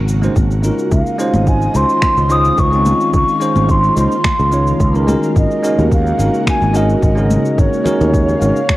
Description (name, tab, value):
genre	sunset chillout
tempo	108 BPM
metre	4/4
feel	swing 53% on 16ths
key	unclear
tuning	A4 = 440 Hz
part	ethereal airy pad	sustained chords	0.0-8.8 s	Db3 to F5	-22 LUFS	equal	ensemble chorus, built-in reverb
part	sustaining fretless electric bass	bass	0.0-8.5 s	Ab1 to Eb2	-15 LUFS	equal	none
part	electronic cabasa and finger snaps	drums	0.1-8.8 s	none	-25 LUFS	equal	overdrive, studio reverb
part	bell-like tine electric piano	accompaniment	0.2-8.6 s	Ab3 to Db5	-18 LUFS	equal	auto-pan
part	electronic kick drum	drums	0.4-8.8 s	none	-16 LUFS	equal	overdrive, studio reverb
part	mellow baroque flute	melody	0.9-8.8 s	Db5 to Eb6	-17 LUFS	equal	digital delay
part	congas	percussion	1.3-8.8 s	none	-22 LUFS	left 1 dB	none
room	moderate plate reverb, RT60 1.5 s, digital ambience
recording	worn, warbling old tape, cassette tape, warbly pitch drift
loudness	-11 LUFS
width	side -17 dB against mid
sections	0.0-8.8 A section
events	none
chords	0.0 Ab9sus4